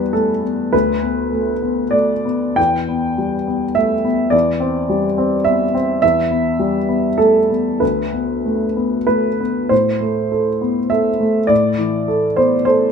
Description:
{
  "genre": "neoclassical minimalist piano",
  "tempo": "91-108 BPM",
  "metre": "3/4",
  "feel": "rubato",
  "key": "E minor",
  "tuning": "A4 = 440 Hz",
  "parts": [
    { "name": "warm upright piano", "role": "solo", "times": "0.0-12.9 s", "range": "D2 to G5", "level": "-15 LUFS", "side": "equal", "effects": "none" }
  ],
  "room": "moderate studio reverb, RT60 0.6 s",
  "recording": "none",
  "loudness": "-15 LUFS",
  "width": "side -6 dB against mid",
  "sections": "0.0-9.7 A section; 9.7-12.9 B section",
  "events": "none",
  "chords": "0.0 Em; 0.7 Bm7/D; 2.6 Em; 4.3 Cadd9/E; 6.0 Em; 7.8 Bm7/D; 9.7 Amadd9",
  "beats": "0.13 | 0.72 1.33 1.94 | 2.58 3.18 3.75 | 4.33 4.90 5.46 | 6.02 6.59 7.18 | 7.81 8.45 9.08 | 9.71 10.31 10.91 | 11.50 12.09 12.67"
}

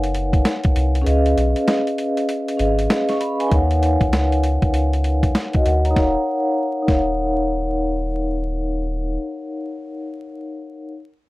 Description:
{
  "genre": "hip hop, boom-bap hip-hop",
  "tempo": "98 BPM",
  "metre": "4/4",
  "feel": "swing 61% on 16ths",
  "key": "Eb minor",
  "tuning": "A4 = 440 Hz",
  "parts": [
    { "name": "vibraphone with soft mallets", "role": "accompaniment", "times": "0.0-10.9 s", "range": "Db4 to Db6", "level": "-21 LUFS", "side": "equal", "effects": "cassette tape, high-pass filter, low-pass filter" },
    { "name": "soft dub sub bass", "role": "bass", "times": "0.0-9.2 s", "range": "Eb1 to Eb2", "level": "-20 LUFS", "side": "equal", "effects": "none" },
    { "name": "boom bap sampler-style drum kit", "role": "drums", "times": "0.0-7.1 s", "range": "hi-hat, kick drum, snare drum", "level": "-20 LUFS", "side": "equal", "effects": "none" }
  ],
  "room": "little or no reverb",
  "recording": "dry, gritty hardware recording, vinyl crackle",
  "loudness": "-17 LUFS",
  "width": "side -19 dB against mid",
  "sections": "0.0-3.5 A section; 3.5-6.0 B section; 6.0-8.4 C section",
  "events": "kick muted 1.1-3.5; filter sweep on vibraphone 3.5-6.0",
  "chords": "0.0 Ebm7; 1.1 Db7; 3.5 Ebm7",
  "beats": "0.45 | 1.06 1.68 2.29 2.90 | 3.51 4.13 4.74 5.35 | 5.96 6.58 7.19 7.80"
}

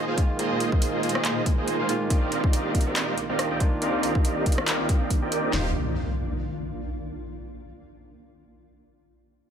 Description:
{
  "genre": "future bass",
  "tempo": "140 BPM",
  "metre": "4/4",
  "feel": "swing 56% on 16ths, half-time",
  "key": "Eb major",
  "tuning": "A4 = 439 Hz",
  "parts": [
    { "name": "barky tine electric piano", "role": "accompaniment", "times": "0.0-5.7 s", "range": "Eb3 to F4", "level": "-30 LUFS", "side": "right 3 dB", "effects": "auto-pan, sidechain pumping, digital delay" },
    { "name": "shimmering ambient pad", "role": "sustained chords", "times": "0.0-5.7 s", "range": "C2 to F4", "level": "-35 LUFS", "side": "equal", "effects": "chorus, built-in reverb, sidechain pumping" },
    { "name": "supersaw chords", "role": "riff", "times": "0.0-5.7 s", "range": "Eb3 to G5", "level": "-27 LUFS", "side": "right 1 dB", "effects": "wide subtle chorus, sidechain pumping, low-pass filter, digital delay" },
    { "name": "big-room dance drum kit", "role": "drums", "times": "0.2-5.4 s", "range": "handclaps, hi-hat, rim click", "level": "-30 LUFS", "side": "equal", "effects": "overdrive, small room reverb" },
    { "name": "trap drum kit", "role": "drums", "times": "0.2-5.6 s", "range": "handclaps, kick drum, snare drum, toms", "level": "-23 LUFS", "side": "equal", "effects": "small room reverb" },
    { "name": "long sustained 808-style bass", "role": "bass", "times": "5.5-5.7 s", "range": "Eb1", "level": "-30 LUFS", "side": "equal", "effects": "sidechain pumping" },
    { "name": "impact", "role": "sound effects", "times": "5.5-7.2 s", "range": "none", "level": "-32 LUFS", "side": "left 1 dB", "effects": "none" }
  ],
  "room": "light reverb",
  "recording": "none",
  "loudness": "-22 LUFS",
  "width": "side -8 dB against mid",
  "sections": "0.0-5.5 A section; 5.5-7.2 B section",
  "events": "filter sweep on supersaw synth 0.0-5.5",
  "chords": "0.0 Bb7sus4; 2.1 Cm11; 5.5 Eb69",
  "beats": "| 0.39 0.82 1.25 1.68 | 2.10 2.53 2.96 3.39 | 3.82 4.25 4.68 5.10 | 5.53 5.96 6.39 6.82"
}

